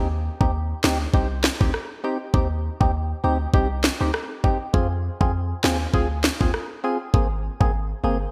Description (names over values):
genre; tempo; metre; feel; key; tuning
dancehall; 100 BPM; 4/4; swing 56% on 16ths; Eb major; A4 = 440 Hz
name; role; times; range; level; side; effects
percussive organ stab; accompaniment; 0.0-8.2 s; Bb3 to Ab4; -29 LUFS; equal; chorus, phaser
warm 808-style bass; bass; 0.0-8.3 s; G1 to F2; -27 LUFS; equal; none
island pop drum kit; drums; 0.4-7.7 s; kick drum, rim click, snare drum; -24 LUFS; equal; none
room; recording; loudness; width
moderate lush hall reverb, RT60 1.9 s; bright 1980s-style digital production; -23 LUFS; mono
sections
0.0-8.3 A section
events
none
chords
0.0 Eb6; 4.7 Fm; 7.1 Abadd9